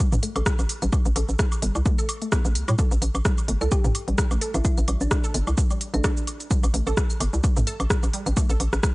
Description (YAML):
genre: minimal techno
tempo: 129 BPM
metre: 4/4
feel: swing 55% on 16ths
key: A minor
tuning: A4 = 443 Hz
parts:
  - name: resonant blip pluck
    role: riff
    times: 0.0-8.5 s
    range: G3 to A4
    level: -34 LUFS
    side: equal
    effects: chorus, sidechain pumping, tape echo
  - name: electronic kick drum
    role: drums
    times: 0.0-8.9 s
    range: none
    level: -22 LUFS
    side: equal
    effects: overdrive, small room ambience
  - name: minimal click drum kit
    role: drums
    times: 0.0-8.9 s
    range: cabasa, hi-hat, rim click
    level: -29 LUFS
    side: equal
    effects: small room ambience
  - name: electronic woodblock, toms and claves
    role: percussion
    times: 0.0-8.9 s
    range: none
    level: -33 LUFS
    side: equal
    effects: overdrive, small room ambience
  - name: hollow knocking FM bass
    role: bass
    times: 0.1-8.8 s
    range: G1 to A2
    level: -23 LUFS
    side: equal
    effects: sidechain pumping
  - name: thumb-piano-like synth pluck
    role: melody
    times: 3.7-6.1 s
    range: D4 to G4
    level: -34 LUFS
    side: equal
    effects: chorus, vintage 12-bit sampler grit, tape echo
room: digital ambience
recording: dry, gritty hardware recording, nothing above 10.3 kHz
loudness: -20 LUFS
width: side -22 dB against mid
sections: 0.0-8.9 A section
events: filter sweep on synth arpeggio sound 0.0-8.9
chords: none